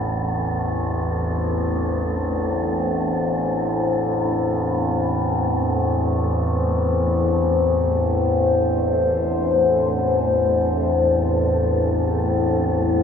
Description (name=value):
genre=dark ambient drone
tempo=free time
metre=none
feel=none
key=A minor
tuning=A4 = 440 Hz
part: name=dark analog pad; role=sustained chords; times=0.0-13.0 s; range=D4 to C5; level=-22 LUFS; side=left 3 dB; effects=chorus, phaser
part: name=overtone-sweeping drone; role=drone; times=0.0-13.0 s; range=A1 to E2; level=-20 LUFS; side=equal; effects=chorus, built-in reverb
part: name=wind-like tuned noise texture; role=texture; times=0.0-13.0 s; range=A3 to A4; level=-32 LUFS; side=equal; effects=built-in reverb
room=wet huge ambient reverb, RT60 8.1 s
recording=studio reverb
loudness=-18 LUFS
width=side -7 dB against mid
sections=0.0-13.0 A section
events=fade-in on synth texture 0.0-13.0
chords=0.0 A5